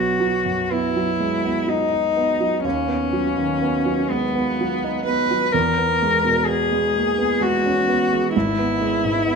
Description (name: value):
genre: classical, romantic duo for cello and grand piano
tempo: 63 BPM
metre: 3/4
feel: rubato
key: B major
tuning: A4 = 441 Hz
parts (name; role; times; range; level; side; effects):
- clear cello; melody; 0.0-9.4 s; B3 to B4; -20 LUFS; left 3 dB; none
- warm concert grand piano; accompaniment; 0.0-9.4 s; G#1 to D#4; -22 LUFS; right 4 dB; none
room: moderate recital hall reverb, RT60 1.3 s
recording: close, detailed microphones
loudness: -18 LUFS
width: side -5 dB against mid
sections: 0.0-9.4 A section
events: none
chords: 0.0 B; 2.6 B/D#; 5.5 E6; 8.3 E/G#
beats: 0.71 1.69 | 2.65 3.61 4.58 | 5.53 6.47 7.41 | 8.35 9.27